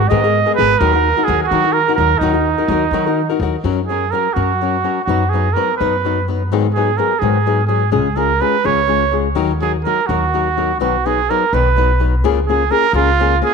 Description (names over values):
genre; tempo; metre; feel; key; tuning
mexican folk, mariachi; 84 BPM (dotted quarters); 6/8; straight; Eb minor, F# major from 3.6 s; A4 = 441 Hz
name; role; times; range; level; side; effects
warm trumpet; melody; 0.0-13.5 s; Eb4 to Eb5; -16 LUFS; right 8 dB; none
nylon-string guitar; accompaniment; 0.0-13.5 s; Ab2 to B4; -19 LUFS; left 11 dB; none
upright bass; bass; 0.0-13.4 s; Ab1 to Eb3; -19 LUFS; equal; none
room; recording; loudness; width
moderate echo chamber reverb, RT60 2.2 s; 1960s-style stereo with parts hard left and right; -13 LUFS; side -5 dB against mid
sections
0.0-3.6 A section; 3.6-13.5 B section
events
none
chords
0.0 Abmadd9; 0.8 Ebm; 3.6 F#; 5.1 B/F#; 6.5 G#m7; 7.9 C#; 9.4 D#m; 10.8 B; 12.2 C#6